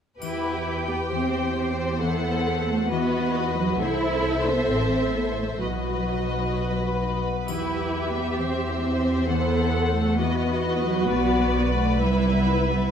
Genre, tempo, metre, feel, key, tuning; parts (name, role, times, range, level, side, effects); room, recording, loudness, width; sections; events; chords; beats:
classical, dramatic, fast romantic movement for symphony orchestra; 132 BPM; 4/4; rubato; A4 = 439 Hz
clear symphonic violin section; melody; 0.2-12.9 s; D5 to G5; -33 LUFS; left 3 dB
warm symphonic violin section; second line; 0.2-12.9 s; B4 to C5; -30 LUFS; left 1 dB
warm symphonic viola section; accompaniment; 0.2-12.9 s; E4 to A4; -30 LUFS; right 2 dB
concert harp; arpeggios; 0.2-12.9 s; A2 to C5; -30 LUFS; left 12 dB
rich symphonic double bass section; bass; 0.2-12.9 s; A1 to E2; -28 LUFS; right 2 dB
warm symphonic cello section; bass; 0.2-12.9 s; F#3 to E4; -27 LUFS; right 2 dB
triangle; percussion; 0.2-1.1, 7.5-8.4 s; -47 LUFS; left 5 dB
light reverb; close, detailed microphones; -22 LUFS; side -8 dB against mid
0.2-12.9 A section
0.2 Em; 1.1 C/E; 2.0 F#dim/E; 2.9 B/E; 3.8 Am/C; 4.7 Am; 5.6 B; 7.5 Em; 8.4 C/E; 9.3 F#dim/E; 10.2 B/E; 11.1 Bm; 12.0 Cmaj7
| 0.21 0.67 1.12 1.57 | 2.02 2.47 2.91 3.35 | 3.81 4.25 4.70 5.16 | 5.62 6.09 6.55 7.01 | 7.48 7.94 8.39 8.84 | 9.29 9.73 10.18 10.63 | 11.09 11.55 12.00 12.46